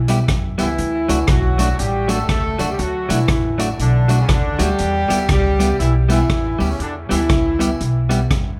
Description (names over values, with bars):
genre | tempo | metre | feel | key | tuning
ska | 120 BPM | 4/4 | swing 61% on 8ths | D major | A4 = 440 Hz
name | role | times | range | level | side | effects
mellow horn section | melody | 0.0-8.1 s | C#3 to A4 | -23 LUFS | equal | dub echo
upright bass | bass | 0.0-8.6 s | G1 to F#2 | -22 LUFS | equal | none
clean electric guitar | accompaniment | 0.1-8.2 s | F#3 to G4 | -26 LUFS | equal | spring reverb
street-band drum kit | drums | 0.1-8.4 s | hi-hat, kick drum, rim click | -23 LUFS | equal | none
tambourine | percussion | 0.1-8.2 s | none | -41 LUFS | equal | none
room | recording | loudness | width
moderate club reverb, RT60 0.6 s | none | -18 LUFS | mono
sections
0.0-8.6 A section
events
none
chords
0.0 Em; 0.8 D; 4.8 Em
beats
0.28 | 0.78 1.28 1.79 2.29 | 2.79 3.29 3.79 4.29 | 4.79 5.29 5.79 6.30 | 6.80 7.30 7.80 8.30